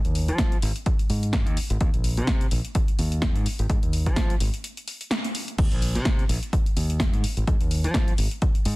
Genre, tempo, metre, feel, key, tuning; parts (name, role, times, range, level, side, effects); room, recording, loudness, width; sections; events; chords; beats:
filtered disco house; 127 BPM; 4/4; swing 56% on 16ths; A4 = 440 Hz
house drum kit; drums; 0.0-8.8 s; crash cymbal, hi-hat, snare drum; -30 LUFS; equal; sidechain pumping on hats, studio reverb, sidechain pumping on cymbals
modern bright fingered electric bass; bass; 0.1-8.8 s; Ab1 to F3; -25 LUFS; equal; tube saturation, sidechain pumping, low-pass filter
electronic kick drum; drums; 0.4-8.5 s; -24 LUFS; equal; studio reverb
little or no reverb; dense, heavily limited modern master; -21 LUFS; side -21 dB against mid
0.0-5.6 A section; 5.6-8.8 B section
break 4.6-5.6; band accent 5.1; drop 5.6-8.8
0.39 0.86 1.33 | 1.81 2.28 2.75 3.22 | 3.70 4.17 4.64 5.11 | 5.59 6.06 6.53 7.00 | 7.48 7.95 8.42